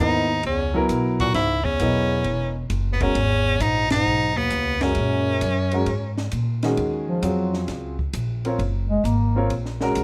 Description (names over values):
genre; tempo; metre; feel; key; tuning
modal jazz; 132 BPM; 4/4; swing 68% on 8ths; C# dorian, Eb dorian from 6.8 s; A4 = 440 Hz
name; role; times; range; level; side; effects
edgy tenor saxophone; melody; 0.0-6.3 s; B3 to F#4; -26 LUFS; equal; none
mellow bass clarinet; second line; 0.0-9.5 s; D#2 to Bb3; -28 LUFS; equal; none
warm grand piano; accompaniment; 0.0-10.0 s; D#3 to D#5; -27 LUFS; equal; none
upright bass; bass; 0.0-10.0 s; E1 to A#2; -27 LUFS; equal; none
compact cocktail drum kit; drums; 0.4-10.0 s; hi-hat, kick drum, ride cymbal, snare drum; -34 LUFS; equal; none
room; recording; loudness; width
light reverb; close, detailed microphones; -22 LUFS; mono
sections
0.0-6.8 A section; 6.8-10.0 B section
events
band accent 3.8; bass clarinet solo 6.8-10.0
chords
0.0 C#m9; 5.0 F#add9; 6.8 Ebm11